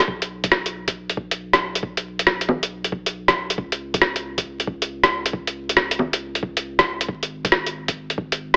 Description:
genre	future garage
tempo	137 BPM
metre	4/4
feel	swing 65% on 16ths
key	unclear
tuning	A4 = 435 Hz
part	lo-fi sampler-style drum kit	drums	0.0-8.6 s	bongos, hi-hat, rim click	-20 LUFS	equal	none
part	warm sub bass	bass	0.1-8.6 s	G#1 to C#2	-38 LUFS	equal	none
part	electronic kick drum	drums	0.1-8.3 s	none	-31 LUFS	equal	none
room	moderate digital room reverb, RT60 1.0 s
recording	vinyl crackle, AM radio sound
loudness	-22 LUFS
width	mono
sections	0.0-8.6 A section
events	none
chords	none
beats	| 0.08 0.52 0.95 1.39 | 1.83 2.27 2.71 3.15 | 3.58 4.02 4.46 4.90 | 5.33 5.77 6.21 6.65 | 7.09 7.53 7.96 8.40

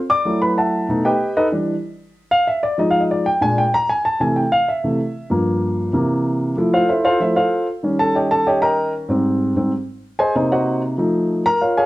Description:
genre	jazz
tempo	190 BPM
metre	4/4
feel	straight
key	unclear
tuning	A4 = 443 Hz
part	dark grand piano	solo	0.1-11.9 s	G2 to D6	-16 LUFS	equal	none
room	moderate club reverb, RT60 0.9 s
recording	dark, warm production, faint mains hum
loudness	-16 LUFS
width	side -17 dB against mid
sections	0.0-6.6 A section; 6.6-11.9 A section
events	grand piano solo 0.0-11.9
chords	0.3 D69/F#; 0.9 B7b13; 1.5 Em7; 2.8 Fm7; 3.4 Bb7; 4.1 C6; 5.3 Gm7; 5.9 C7; 6.6 Fmaj7; 7.8 Eb7; 9.1 Abmaj7; 10.4 Cm7b5; 11.0 F7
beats	| 0.27 0.58 0.90 1.21 | 1.53 1.84 2.16 2.48 | 2.79 3.11 3.42 3.74 | 4.05 4.37 4.68 5.00 | 5.31 5.63 5.94 6.26 | 6.58 6.89 7.21 7.52 | 7.84 8.15 8.47 8.78 | 9.10 9.41 9.73 10.04 | 10.36 10.67 10.99 11.30 | 11.62

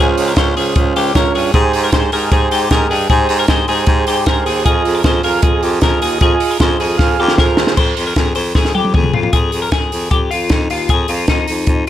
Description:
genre	jangly indie pop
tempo	154 BPM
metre	4/4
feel	straight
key	F minor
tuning	A4 = 440 Hz
part	combo organ	accompaniment	0.0-7.7 s	Db4 to F5	-17 LUFS	right 7 dB	none
part	twelve-string electric guitar	arpeggios	0.0-11.8 s	Eb4 to C5	-18 LUFS	left 6 dB	none
part	breathy baritone saxophone	bass	0.0-11.9 s	Db2 to Ab2	-19 LUFS	equal	none
part	compact cocktail drum kit	drums	0.2-11.9 s	crash cymbal, hi-hat, kick drum, snare drum, toms	-15 LUFS	equal	none
room	light reverb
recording	none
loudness	-12 LUFS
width	side -12 dB against mid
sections	0.0-7.8 A section; 7.8-9.3 B section; 9.3-11.9 C section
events	drum fill 7.0-7.8, 8.6-9.3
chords	0.0 Dbmaj7; 1.5 Abmaj7; 4.7 Fm7; 7.8 Fm; 9.3 Fm7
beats	0.36 0.75 1.14 | 1.53 1.93 2.32 2.71 | 3.10 3.49 3.88 4.27 | 4.66 5.05 5.44 5.83 | 6.21 6.60 6.99 7.38 | 7.77 8.16 8.55 8.94 | 9.34 9.72 10.12 10.51 | 10.90 11.29 11.68

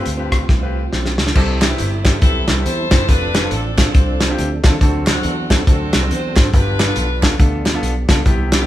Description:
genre	uptempo gospel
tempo	139 BPM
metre	4/4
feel	swing 60% on 8ths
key	C major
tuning	A4 = 440 Hz
part	clear concert grand piano	accompaniment	0.0-8.7 s	G2 to C5	-24 LUFS	left 1 dB	none
part	percussive tonewheel organ	sustained chords	0.0-8.7 s	E3 to A4	-29 LUFS	right 3 dB	fast rotary speaker, chorus vibrato
part	warm studio string section	sustained chords	0.0-1.3 s	F5 to C6	-35 LUFS	left 6 dB	none
part	fingered electric bass	bass	0.1-8.6 s	F1 to E2	-21 LUFS	equal	none
part	warm soul drum kit	drums	0.1-8.6 s	crash cymbal, hi-hat, kick drum, rim click, snare drum	-15 LUFS	equal	none
part	bright saxophone section	melody	1.6-8.7 s	A3 to C5	-24 LUFS	left 1 dB	none
part	group handclap	percussion	1.6-8.6 s	none	-30 LUFS	right 2 dB	none
room	light reverb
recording	band playing live in one room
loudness	-13 LUFS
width	side -13 dB against mid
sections	0.0-1.4 A section; 1.4-8.7 B section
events	drum fill 0.5-1.4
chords	0.0 G9sus4; 1.4 C6; 3.1 F6; 4.8 D7; 6.5 G7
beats	0.06 0.49 0.92 | 1.35 1.79 2.22 2.65 | 3.08 3.52 3.95 4.38 | 4.81 5.24 5.67 6.10 | 6.54 6.97 7.40 7.83 | 8.26

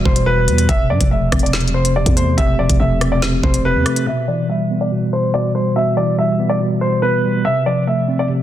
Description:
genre	hip hop, drill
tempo	142 BPM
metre	4/4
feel	half-time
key	E phrygian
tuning	A4 = 439 Hz
part	mellow tine electric piano	accompaniment	0.0-8.4 s	B2 to C4	-18 LUFS	equal	fast stereo tremolo, low-pass filter
part	growling 808-style bass	bass	0.0-3.9 s	E1 to G2	-18 LUFS	equal	none
part	warm baby grand piano	melody	0.1-8.3 s	B4 to E5	-19 LUFS	equal	low-pass filter, digital delay
part	drill drum kit	drums	0.1-4.1 s	hi-hat, kick drum, rim click, snare drum	-18 LUFS	equal	none
room	light reverb, digital ambience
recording	dense, heavily limited modern master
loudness	-14 LUFS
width	side -12 dB against mid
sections	0.0-4.1 A section; 4.1-8.4 B section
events	filter sweep 4.1-8.4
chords	0.0 Em; 0.7 F/E; 4.1 Em; 7.4 F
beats	0.27 | 0.69 1.11 1.53 1.96 | 2.38 2.80 3.22 3.65 | 4.07 4.49 4.91 5.34 | 5.76 6.18 6.60 7.03 | 7.45 7.87 8.29

